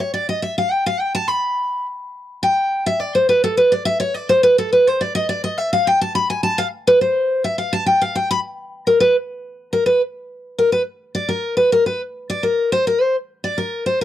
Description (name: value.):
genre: bluegrass.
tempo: 210 BPM.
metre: 4/4.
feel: straight.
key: unclear.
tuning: A4 = 440 Hz.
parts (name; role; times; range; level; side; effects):
picked steel-string acoustic guitar; solo; 0.0-14.0 s; A4 to B5; -16 LUFS; equal; none.
room: little or no reverb.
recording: dry, close 1970s-style studio recording.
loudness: -16 LUFS.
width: side -12 dB against mid.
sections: 0.0-8.7 A section; 8.7-14.0 A section.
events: steel-string acoustic guitar solo 0.0-8.7, 8.7-14.0.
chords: none.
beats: 0.14 0.42 | 0.71 1.00 1.28 1.57 | 1.86 2.14 2.43 2.72 | 3.00 3.29 3.58 3.86 | 4.15 4.44 4.72 5.01 | 5.30 5.58 5.87 6.15 | 6.44 6.73 7.01 7.30 | 7.58 7.87 8.15 8.44 | 8.73 9.01 9.30 9.58 | 9.87 10.15 10.44 10.72 | 11.01 11.29 11.58 11.87 | 12.15 12.44 12.72 13.01 | 13.29 13.58 13.86.